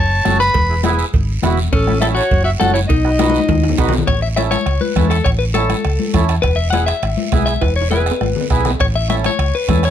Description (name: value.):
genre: latin, cumbia.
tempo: 203 BPM.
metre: 4/4.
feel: straight.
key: unclear.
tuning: A4 = 440 Hz.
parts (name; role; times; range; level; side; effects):
warm clarinet; melody; 0.0-3.9 s; A4 to B5; -18 LUFS; equal; none.
clean electric guitar; second line; 0.0-9.9 s; C#4 to F#5; -20 LUFS; left 6 dB; none.
hollow-body short-scale fingered electric bass; bass; 0.0-9.9 s; E1 to E2; -18 LUFS; equal; none.
mellow accordion; accompaniment; 0.2-9.9 s; B3 to B4; -22 LUFS; right 5 dB; none.
bombo; percussion; 0.3-9.9 s; none; -20 LUFS; right 2 dB; none.
congas; percussion; 0.3-9.8 s; none; -22 LUFS; left 6 dB; none.
cowbell and timbales; percussion; 0.3-9.9 s; none; -28 LUFS; right 8 dB; none.
guiro; percussion; 0.3-9.9 s; none; -31 LUFS; right 6 dB; none.
room: light reverb.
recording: close, detailed microphones.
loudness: -13 LUFS.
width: side -10 dB against mid.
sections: 0.0-4.1 A section; 4.1-9.9 B section.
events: drum fill 3.2-4.1, 7.6-8.8; clean electric guitar solo 4.1-9.9.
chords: 0.0 F#m; 0.5 E; 1.7 A; 2.3 F#m; 2.9 B; 4.1 A; 6.4 E; 8.8 A.